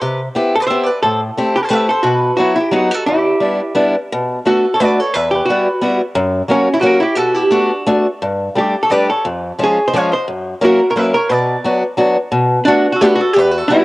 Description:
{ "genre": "musette waltz", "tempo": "176 BPM", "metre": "3/4", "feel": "swing 53% on 8ths, rubato", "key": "E minor, B minor from 4.1 s", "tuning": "A4 = 441 Hz", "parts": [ { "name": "archtop guitar, miked and amplified", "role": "melody", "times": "0.0-13.8 s", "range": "C#4 to C#5", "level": "-15 LUFS", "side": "equal", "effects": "cassette tape" }, { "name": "mandolin", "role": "second line", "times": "0.0-13.8 s", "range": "F#4 to E#5", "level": "-21 LUFS", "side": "right 2 dB", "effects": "cassette tape" }, { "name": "picked steel-string acoustic guitar", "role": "accompaniment", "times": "0.0-13.8 s", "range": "E2 to G4", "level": "-15 LUFS", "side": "left 1 dB", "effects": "cassette tape" } ], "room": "moderate spring reverb, RT60 1.9 s", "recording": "home recording on cassette", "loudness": "-12 LUFS", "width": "side -19 dB against mid", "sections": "0.0-4.1 A section; 4.1-12.3 B section; 12.3-13.8 B section", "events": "none", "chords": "0.0 Cmaj7; 1.0 Am7; 2.0 Bsus4; 2.7 B; 3.1 Em7; 4.1 Bm7; 5.1 Emadd9; 6.2 F#; 7.2 Bm7; 8.2 Gsus2; 9.3 C#/E#; 10.3 F#7; 11.3 Bm; 12.3 Bm7" }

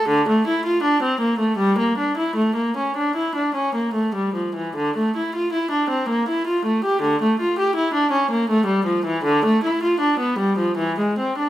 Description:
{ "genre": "classical, baroque-style suite movement for unaccompanied viola", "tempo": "73-82 BPM", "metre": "3/4", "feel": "rubato", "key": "unclear", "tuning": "A4 = 440 Hz", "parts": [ { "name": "warm viola", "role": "solo", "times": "0.0-11.5 s", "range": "D3 to G4", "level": "-18 LUFS", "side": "equal", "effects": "none" } ], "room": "wet stone room reverb, RT60 1.3 s", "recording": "none", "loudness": "-18 LUFS", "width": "side -13 dB against mid", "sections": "0.0-11.5 A section", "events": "none", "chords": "none" }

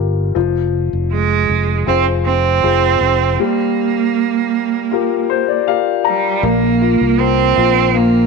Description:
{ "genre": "pop ballad", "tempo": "79 BPM", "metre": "4/4", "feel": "straight", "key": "unclear", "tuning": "A4 = 440 Hz", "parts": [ { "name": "warm concert grand piano", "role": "accompaniment", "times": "0.0-8.3 s", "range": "F3 to Bb5", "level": "-18 LUFS", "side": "left 16 dB", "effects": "none" }, { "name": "fingered electric bass", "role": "bass", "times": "0.0-8.3 s", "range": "F1 to C2", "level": "-18 LUFS", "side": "equal", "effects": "none" }, { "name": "clear cello", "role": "melody", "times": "1.1-8.3 s", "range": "G3 to C4", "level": "-15 LUFS", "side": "right 12 dB", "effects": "none" } ], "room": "moderate plate reverb, RT60 2.8 s", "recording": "1960s-style stereo with parts hard left and right", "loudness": "-13 LUFS", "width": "side -4 dB against mid", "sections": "0.0-6.4 A section; 6.4-8.3 B section", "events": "grand piano fill 4.9-6.4", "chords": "0.4 Fm; 3.4 Gm7; 6.4 Bb5" }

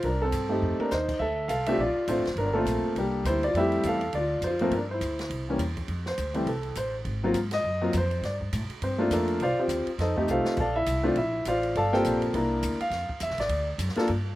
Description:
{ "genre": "jazz piano trio", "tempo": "205 BPM", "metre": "4/4", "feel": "swing 59% on 8ths", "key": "F major", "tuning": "A4 = 440 Hz", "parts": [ { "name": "warm concert grand piano", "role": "melody", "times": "0.0-14.1 s", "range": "E3 to A5", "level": "-26 LUFS", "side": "equal", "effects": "none" }, { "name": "upright bass", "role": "bass", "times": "0.0-14.4 s", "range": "D1 to A2", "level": "-31 LUFS", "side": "equal", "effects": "none" }, { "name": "open jazz drum kit", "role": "drums", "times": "0.0-14.2 s", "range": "crash cymbal, hi-hat, kick drum, ride cymbal, snare drum, toms", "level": "-39 LUFS", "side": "right 1 dB", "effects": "none" } ], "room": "little or no reverb", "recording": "recorded outdoors, with no room sound", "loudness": "-25 LUFS", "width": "side -16 dB against mid", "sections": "0.0-5.9 A section; 5.9-14.4 B section", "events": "drum fill 0.6, 10.3; grand piano solo 5.9-14.4", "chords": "0.0 Csus2; 0.6 F7; 1.2 Bbmaj9; 2.4 Gm11; 3.0 C9; 3.5 Fmaj9; 4.1 Dm7; 4.7 G5; 5.3 C; 5.9 F; 7.1 Ab13; 8.2 Gm9; 9.4 Cmadd9; 10.0 F7; 10.6 Bbmaj9; 11.7 Gm11; 12.3 C9; 12.9 Fmaj7; 13.5 D" }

